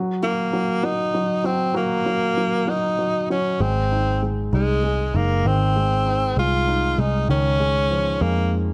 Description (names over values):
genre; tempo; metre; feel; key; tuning
six-eight pop ballad; 65 BPM (dotted quarters); 6/8; straight; unclear; A4 = 440 Hz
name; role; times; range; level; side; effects
warm baby grand piano; accompaniment; 0.0-8.7 s; Eb3 to Eb4; -27 LUFS; equal; none
warm tenor saxophone; melody; 0.2-8.6 s; Ab3 to F4; -24 LUFS; equal; none
vintage muted picked electric bass; bass; 3.6-8.7 s; Gb1 to F2; -24 LUFS; equal; none
room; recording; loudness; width
light reverb, small room ambience; none; -21 LUFS; mono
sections
0.0-8.7 A section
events
none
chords
0.0 N.C.; 3.6 Ab; 7.3 Dbadd9